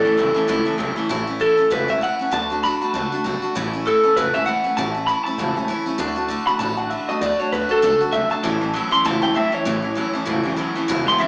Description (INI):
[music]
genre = rockabilly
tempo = 196 BPM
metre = 4/4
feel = swing 58% on 8ths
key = A major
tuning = A4 = 440 Hz
[part]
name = electric guitar through a small old amp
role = melody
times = 0.0-11.3 s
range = A4 to C6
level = -22 LUFS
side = equal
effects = slapback echo, digital delay
[part]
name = picked steel-string acoustic guitar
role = accompaniment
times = 0.0-11.3 s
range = E2 to F#4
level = -27 LUFS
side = equal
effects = slapback echo
[part]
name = electric guitar through a small old amp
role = riff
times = 0.0-1.1, 8.4-11.3 s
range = E2 to F#3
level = -26 LUFS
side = equal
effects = spring reverb
[part]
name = upright bass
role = bass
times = 0.0-11.2 s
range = E1 to D2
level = -30 LUFS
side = equal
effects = none
[sound]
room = light reverb, small room ambience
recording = live gig heard through the venue's PA, club reverb, small speaker sound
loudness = -21 LUFS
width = mono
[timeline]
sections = 0.0-1.1 A section; 1.1-11.3 B section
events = clean electric guitar solo 1.1-11.3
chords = 0.0 A; 2.3 D; 3.5 A; 6.0 D; 8.4 A